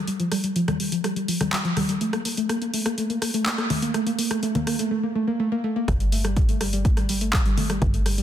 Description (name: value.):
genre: melodic techno.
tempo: 124 BPM.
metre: 4/4.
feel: straight.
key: G minor.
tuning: A4 = 440 Hz.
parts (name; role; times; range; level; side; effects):
soft round pluck; arpeggios; 0.1-8.2 s; F3 to Bb3; -24 LUFS; equal; chorus, sidechain pumping, digital delay.
techno drum kit; drums; 0.1-8.2 s; congas, handclaps, hi-hat, rim click; -27 LUFS; left 2 dB; overdrive, sidechain pumping on perc, sidechain pumping on hats.
plucky analog bass; bass; 5.9-8.2 s; G1; -26 LUFS; equal; sidechain pumping.
electronic kick drum; drums; 5.9-7.9 s; none; -22 LUFS; equal; none.
room: moderate lush hall reverb, RT60 1.6 s.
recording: dense, heavily limited modern master.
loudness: -21 LUFS.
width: side -10 dB against mid.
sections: 0.0-5.9 A section; 5.9-8.2 B section.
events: build-up 0.0-5.9; filter sweep on synth arpeggio sound 0.0-5.9; drop 5.9-8.2.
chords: 0.0 Fsus2; 2.0 N.C.; 5.9 Gsus2.